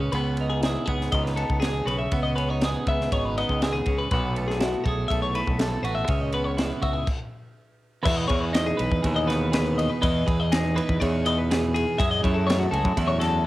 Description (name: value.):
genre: math rock and midwest emo.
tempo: 121 BPM.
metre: 4/4.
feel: straight.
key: unclear.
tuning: A4 = 440 Hz.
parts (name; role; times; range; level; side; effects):
twelve-string electric guitar; accompaniment; 0.0-13.5 s; E2 to B4; -28 LUFS; right 4 dB; cassette tape.
twelve-string electric guitar; arpeggios; 0.0-13.4 s; E4 to E5; -28 LUFS; left 4 dB; cassette tape.
growling fingered electric bass; bass; 0.0-13.5 s; G#1 to F#2; -27 LUFS; equal; overdrive.
crisp fusion drum kit; drums; 0.1-13.3 s; crash cymbal, kick drum, ride cymbal, snare drum; -28 LUFS; equal; cassette tape.
room: small room reverb.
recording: home recording on cassette.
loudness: -22 LUFS.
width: side -16 dB against mid.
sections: 0.0-8.0 A section; 8.0-13.5 B section.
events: stop 7.1-8.0.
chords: 0.0 C#m9; 4.1 B7sus4; 6.1 C#m7; 8.0 Emaj7; 12.0 F#m9.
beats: | 0.12 0.62 1.12 1.61 | 2.11 2.60 3.10 3.60 | 4.09 4.59 5.08 5.58 | 6.07 6.57 7.06 7.56 | 8.05 8.54 9.04 9.53 | 10.02 10.51 11.00 11.49 | 11.98 12.48 12.97 13.46.